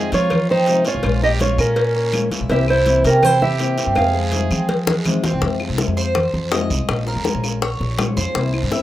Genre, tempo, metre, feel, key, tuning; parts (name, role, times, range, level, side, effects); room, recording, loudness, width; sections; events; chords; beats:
latin, Cuban son and guajira; 164 BPM; 4/4; straight; F minor; A4 = 440 Hz
nylon-string guitar; melody; 0.0-5.0 s; Bb4 to F5; -19 LUFS; right 1 dB; plate reverb
bright trumpet; second line; 0.0-5.0 s; Db4 to Ab4; -29 LUFS; right 3 dB; plate reverb
nylon-string guitar; accompaniment; 0.0-8.8 s; C3 to F4; -25 LUFS; left 4 dB; plate reverb
Cuban tres; arpeggios; 0.0-8.8 s; Ab3 to E5; -25 LUFS; right 3 dB; slapback echo, plate reverb
upright bass; bass; 0.0-8.7 s; Bb1 to F3; -21 LUFS; equal
congas; percussion; 0.1-8.8 s; -26 LUFS; right 1 dB
cowbell and bongos; percussion; 0.1-8.8 s; -25 LUFS; left 4 dB
guiro; percussion; 0.1-8.8 s; -31 LUFS; right 4 dB
claves; percussion; 0.3-8.7 s; -33 LUFS; left 4 dB
moderate small room reverb, RT60 0.5 s; rough home demo mix; -16 LUFS; side -13 dB against mid
0.0-5.4 A section; 5.4-8.8 B section
drum fill 4.3-5.4; Cuban tres solo 5.4-8.8
0.0 Fm7; 1.0 Bbm7; 2.5 C7; 4.0 Fm7; 6.9 Bbm7
0.31 0.68 | 1.04 1.41 1.77 2.14 | 2.50 2.87 3.23 3.60 | 3.96 4.33 4.69 5.06 | 5.42 5.79 6.16 6.52 | 6.89 7.25 7.62 7.99 | 8.35 8.72